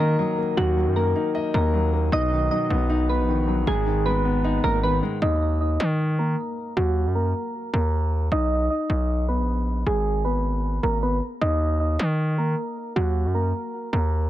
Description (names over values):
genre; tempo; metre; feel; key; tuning
hip hop, trap; 155 BPM; 4/4; half-time; Eb minor; A4 = 440 Hz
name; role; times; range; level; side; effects
soft electric-piano-like synth keys; melody; 0.0-14.3 s; Gb3 to D#5; -25 LUFS; right 1 dB; chorus, low-pass filter, ping-pong delay
dark grand piano; accompaniment; 0.0-5.2 s; Ab2 to Eb5; -26 LUFS; left 2 dB; low-pass filter
distorted 808-style bass; bass; 0.0-14.3 s; Ab1 to Eb3; -23 LUFS; equal; distortion
room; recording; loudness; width
little or no reverb; none; -21 LUFS; side -14 dB against mid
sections
0.0-5.2 A section; 5.2-14.3 B section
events
none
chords
0.0 Ebm; 2.1 B; 3.7 Abm; 5.2 Ebm; 8.3 B; 9.9 Abm; 11.4 Ebm